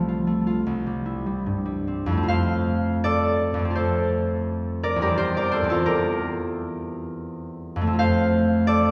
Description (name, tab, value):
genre	classical, solo harp piece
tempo	69-89 BPM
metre	4/4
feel	rubato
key	F major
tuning	A4 = 441 Hz
part	concert harp	solo	0.0-8.9 s	C2 to F5	-24 LUFS	equal	none
room	wet concert hall reverb, RT60 2.2 s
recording	heard from further back in the room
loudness	-24 LUFS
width	mono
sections	0.0-2.3 A section; 2.3-8.9 B section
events	none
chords	0.0 F/C; 0.7 C; 2.3 F